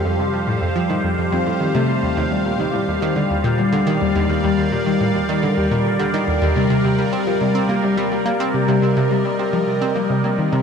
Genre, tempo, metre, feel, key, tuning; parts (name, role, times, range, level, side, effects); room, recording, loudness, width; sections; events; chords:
ambient, sequencer-driven space music; 106 BPM; 4/4; straight; A4 = 442 Hz
evolving wavetable pad; sustained chords; 0.0-10.6 s; G3 to F5; -21 LUFS; equal; phaser, built-in reverb
Celtic harp; arpeggios; 0.0-10.6 s; F3 to Bb4; -22 LUFS; moving between left 8 dB and left 2 dB; auto-pan, tape echo
analog pluck; riff; 0.1-10.6 s; Eb2 to C4; -20 LUFS; right 2 dB; chorus, tape echo
wet cathedral reverb, RT60 5.4 s; in a vast, echoing space; -16 LUFS; side -6 dB against mid
0.0-10.6 A section
0.0 F; 2.0 Ebmaj7; 6.6 Cm7